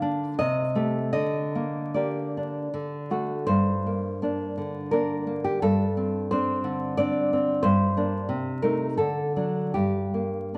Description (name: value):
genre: romantic piece for solo classical guitar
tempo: 74-93 BPM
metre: 3/4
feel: rubato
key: G minor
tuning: A4 = 439 Hz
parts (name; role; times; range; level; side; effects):
- nylon-string guitar; solo; 0.0-10.6 s; G2 to F5; -26 LUFS; equal; none
room: wet recital hall reverb, RT60 1.6 s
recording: vinyl crackle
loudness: -26 LUFS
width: mono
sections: 0.0-10.6 A section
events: none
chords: 0.4 Am7b5/C; 1.1 Gm/D; 2.7 D; 3.5 Gm; 5.6 D5/G; 7.6 Gm; 8.3 Adim/C; 9.0 D; 9.8 Gm